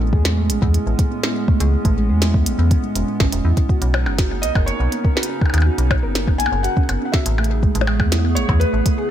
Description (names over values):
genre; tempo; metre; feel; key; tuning
IDM; 122 BPM; 4/4; straight; unclear; A4 = 441 Hz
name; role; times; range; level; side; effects
warbly tape-like pad; sustained chords; 0.0-9.1 s; A2 to G#4; -26 LUFS; right 1 dB; chorus, built-in reverb
harp-like synth pluck; arpeggios; 0.0-9.1 s; G#3 to A#4; -25 LUFS; right 4 dB; chorus, vintage 12-bit sampler grit, ping-pong delay
metallic FM bass; bass; 0.0-8.8 s; E1 to E2; -18 LUFS; equal; tube saturation
electronic kick drum; drums; 0.1-9.0 s; none; -18 LUFS; equal; none
glitchy drum kit; drums; 0.3-9.0 s; hi-hat, percussion blips, snare drum; -24 LUFS; left 1 dB; ping-pong delay
felt-muted upright piano; melody; 4.4-9.1 s; B4 to G#5; -25 LUFS; left 2 dB; wide subtle chorus, ping-pong delay
room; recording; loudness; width
light reverb; none; -16 LUFS; side -11 dB against mid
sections
0.0-9.1 A section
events
none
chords
0.0 Amaj9; 3.7 Bmaj9; 7.4 Amaj9